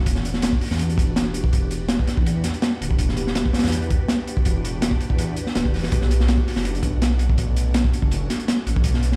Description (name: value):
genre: drum and bass, jungle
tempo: 164 BPM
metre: 4/4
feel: straight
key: E dorian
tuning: A4 = 440 Hz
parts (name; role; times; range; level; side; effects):
- dark detuned saw bass; bass; 0.0-9.2 s; D1 to E2; -25 LUFS; equal; none
- crunchy breakbeat drum kit; drums; 0.1-9.2 s; hi-hat, kick drum, snare drum; -24 LUFS; equal; none
room: small room reverb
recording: played on a big sound system in a bare room, large studio reverb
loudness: -21 LUFS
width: mono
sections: 0.0-9.2 A section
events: none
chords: none